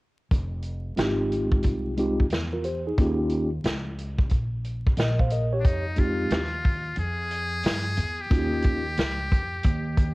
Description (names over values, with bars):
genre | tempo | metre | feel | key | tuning
hip hop, jazz-hop | 90 BPM | 4/4 | swing 65% on 16ths | F minor | A4 = 440 Hz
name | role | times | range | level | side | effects
upright bass | bass | 0.3-10.1 s | F1 to G2 | -29 LUFS | equal | none
vintage drum kit | drums | 0.3-10.1 s | hi-hat, kick drum, snare drum | -24 LUFS | equal | cassette tape
mellow tine electric piano | accompaniment | 1.0-8.9 s | Ab3 to F5 | -26 LUFS | equal | medium stereo tremolo
trumpet with metal mute | melody | 5.6-10.1 s | D4 to Ab4 | -30 LUFS | left 1 dB | cassette tape, tape echo
room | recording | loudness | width
small room ambience | home recording on cassette, vinyl crackle | -23 LUFS | side -21 dB against mid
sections
0.3-5.6 A section; 5.6-10.1 B section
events
none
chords
0.3 Fm9; 3.0 Eb7; 5.6 Fm9; 8.3 Eb7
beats
| 0.31 0.98 1.65 2.31 | 2.98 3.65 4.31 4.98 | 5.64 6.31 6.98 7.64 | 8.31 8.98 9.64